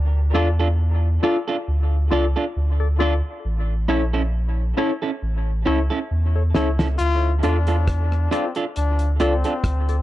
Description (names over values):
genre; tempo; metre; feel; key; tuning
dub reggae; 68 BPM; 4/4; swing 55% on 16ths; D harmonic minor; A4 = 435 Hz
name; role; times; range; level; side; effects
warm sub bass; bass; 0.0-10.0 s; A1 to E2; -20 LUFS; equal; none
electric guitar at the edge of break-up; accompaniment; 0.3-9.5 s; C#4 to A4; -26 LUFS; right 4 dB; dub echo
percussive organ stab; stabs; 0.3-10.0 s; E4 to D5; -27 LUFS; left 5 dB; chorus, dub echo
cloth-damped thuddy drum kit; drums; 6.5-10.0 s; hi-hat, kick drum, rim click, snare drum; -26 LUFS; equal; none
brilliant trombone; second line; 7.0-10.0 s; C4 to F4; -28 LUFS; left 5 dB; dub echo
room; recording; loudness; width
light reverb, small room reverb; dark, warm production; -18 LUFS; side -15 dB against mid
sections
0.0-10.0 A section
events
drum fill 6.1-7.0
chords
0.0 Dm; 3.4 A; 7.0 Dm